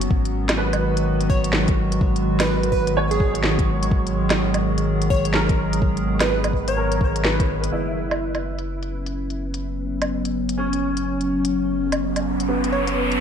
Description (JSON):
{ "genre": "future garage", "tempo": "126 BPM", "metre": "4/4", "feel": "swing 63% on 16ths", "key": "unclear", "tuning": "A4 = 440 Hz", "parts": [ { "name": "bright upright piano", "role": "accompaniment", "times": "0.0-13.2 s", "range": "B3 to C#5", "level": "-28 LUFS", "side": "right 1 dB", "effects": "ensemble chorus, sidechain pumping, low-pass filter, digital delay" }, { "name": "warbly tape-like pad", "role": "sustained chords", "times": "0.0-13.2 s", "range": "D#3 to G#4", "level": "-24 LUFS", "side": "right 1 dB", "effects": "chorus, built-in reverb, vintage 12-bit sampler grit, sidechain pumping" }, { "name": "soft dub sub bass", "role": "bass", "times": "0.0-13.2 s", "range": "F#1 to G#1", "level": "-26 LUFS", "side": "equal", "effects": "sidechain pumping" }, { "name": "organic electronic drum kit", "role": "drums", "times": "0.0-13.2 s", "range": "hi-hat, snare drum, woodblock", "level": "-25 LUFS", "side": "equal", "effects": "low-pass filter on hats, low-pass filter on snare, low-pass filter on perc, low-pass filter on room, gated reverb" }, { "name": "electronic kick drum", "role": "drums", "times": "0.1-7.5 s", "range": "none", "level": "-22 LUFS", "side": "equal", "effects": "none" }, { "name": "glassy wavetable pluck", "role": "melody", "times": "1.3-7.2, 12.7-13.0 s", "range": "G#4 to C#5", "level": "-27 LUFS", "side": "right 1 dB", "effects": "chorus, digital delay" }, { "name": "riser", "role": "sound effects", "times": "12.1-13.2 s", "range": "none", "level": "-27 LUFS", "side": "equal", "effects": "none" } ], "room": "light reverb, digital ambience", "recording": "bright 1980s-style digital production", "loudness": "-19 LUFS", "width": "side -8 dB against mid", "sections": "0.0-7.7 A section; 7.7-13.2 B section", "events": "filter sweep on drum 7.7-13.2; filter sweep on ambient pad 7.7-13.2; filter sweep on upright piano 7.7-13.2; riser 12.1-13.2", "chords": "0.1 G#m7; 7.7 F#sus4", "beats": "| 0.10 0.58 1.06 1.53 | 2.01 2.48 2.96 3.44 | 3.91 4.39 4.87 5.34 | 5.82 6.29 6.77 7.25 | 7.72 8.20 8.68 9.15 | 9.63 10.10 10.58 11.06 | 11.53 12.01 12.48 12.96" }